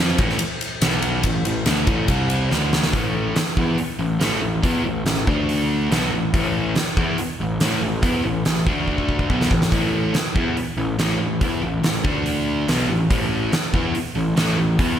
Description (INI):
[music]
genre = hard rock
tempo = 142 BPM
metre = 4/4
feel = straight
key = A minor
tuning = A4 = 440 Hz
[part]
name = sludgy distorted guitar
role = riff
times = 0.0-15.0 s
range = A2 to F4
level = -22 LUFS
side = left 1 dB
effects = overdrive
[part]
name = fuzz picked electric bass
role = bass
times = 0.0-15.0 s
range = A1 to F2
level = -25 LUFS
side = equal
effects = overdrive
[part]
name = huge arena drum kit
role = drums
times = 0.2-14.9 s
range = hi-hat, kick drum, ride cymbal, snare drum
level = -22 LUFS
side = equal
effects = none
[sound]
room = moderate lush hall reverb, RT60 2.0 s, small room ambience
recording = bright 1980s-style digital production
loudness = -18 LUFS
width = side -10 dB against mid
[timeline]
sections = 0.0-2.9 A section; 2.9-15.0 B section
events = drum fill 2.5-2.9, 8.9-9.7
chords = 0.0 Am; 0.8 B5; 1.2 A5; 2.1 C5; 2.5 D5; 2.9 A5; 5.3 D5; 5.9 A5; 8.7 D5; 9.3 A5; 12.0 D5; 12.7 A5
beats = 0.41 0.83 | 1.25 1.67 2.09 2.52 | 2.94 3.36 3.79 4.21 | 4.63 5.06 5.48 5.90 | 6.33 6.75 7.17 7.60 | 8.02 8.44 8.87 9.29 | 9.71 10.14 10.56 10.98 | 11.41 11.83 12.25 12.68 | 13.10 13.52 13.94 14.37 | 14.79